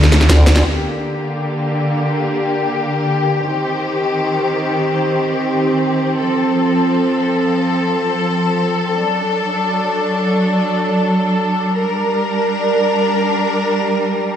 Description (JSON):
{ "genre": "dark technical drum and bass", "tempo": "free time", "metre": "none", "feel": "none", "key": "G minor", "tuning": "A4 = 441 Hz", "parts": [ { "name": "breakbeat sampler-style drum kit", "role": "drums", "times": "0.0-0.6 s", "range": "hi-hat, snare drum", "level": "-24 LUFS", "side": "equal", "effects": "none" }, { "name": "drum and bass drum kit", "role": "drums", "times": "0.0-0.6 s", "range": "hi-hat, snare drum", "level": "-17 LUFS", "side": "equal", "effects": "none" }, { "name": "formant-sweep wobble bass", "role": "bass", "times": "0.3-0.6 s", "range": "D2", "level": "-10 LUFS", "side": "equal", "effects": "chorus" }, { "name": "rich studio string section", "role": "sustained chords", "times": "0.6-14.4 s", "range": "D3 to Bb4", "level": "-15 LUFS", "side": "equal", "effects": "low-pass filter" } ], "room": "wet lush hall reverb, RT60 1.9 s, digital ambience", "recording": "played on a big sound system in a bare room, large studio reverb", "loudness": "-14 LUFS", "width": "side -9 dB against mid", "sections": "0.6-14.4 A section", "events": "drum fill 0.0-0.6; band accent 0.6", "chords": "0.0 D5; 0.6 Gm; 3.4 Eb6; 6.2 F; 9.0 D; 11.7 Gm" }